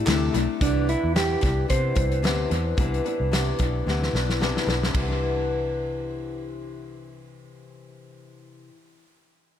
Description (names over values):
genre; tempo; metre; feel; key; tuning
indie pop, bedroom pop; 111 BPM; 4/4; swing 55% on 16ths; C major; A4 = 440 Hz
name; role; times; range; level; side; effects
mellow electric guitar; melody; 0.0-4.4 s; D4 to C5; -27 LUFS; right 4 dB; wide subtle chorus, tape echo
flamenco guitar; accompaniment; 0.0-8.9 s; C3 to E4; -28 LUFS; left 4 dB; wide subtle chorus, warbly pitch drift, tape echo
vintage muted fingered electric bass; bass; 0.1-8.7 s; B1 to C3; -27 LUFS; equal; none
loose indie drum kit; drums; 0.1-5.1 s; hi-hat, kick drum, ride cymbal, snare drum; -26 LUFS; equal; tape echo
room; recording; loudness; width
light reverb, small room ambience; echo-heavy mix; -22 LUFS; side -10 dB against mid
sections
0.6-4.9 A section; 4.9-9.3 B section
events
drum fill 3.9-4.9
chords
0.0 C69; 0.6 Cmaj9